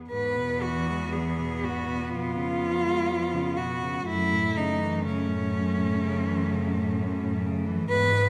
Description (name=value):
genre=classical, lyrical piece for cello ensemble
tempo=58-67 BPM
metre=4/4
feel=rubato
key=unclear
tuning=A4 = 438 Hz
part: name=rich cello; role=melody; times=0.1-8.3 s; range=C#4 to B4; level=-30 LUFS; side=equal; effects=none
part: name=rich cello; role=second line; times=0.1-8.3 s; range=G#3 to B3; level=-34 LUFS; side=equal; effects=none
part: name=rich cello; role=accompaniment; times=0.1-8.3 s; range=E2 to G#3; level=-35 LUFS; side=equal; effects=none
part: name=warm cello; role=bass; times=0.1-8.3 s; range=E2 to G#2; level=-34 LUFS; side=equal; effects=none
room=wet recital hall reverb, RT60 1.4 s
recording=none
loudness=-27 LUFS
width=mono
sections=0.1-8.3 A section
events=none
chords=0.1 E; 2.1 C#7/E#; 4.1 F#m7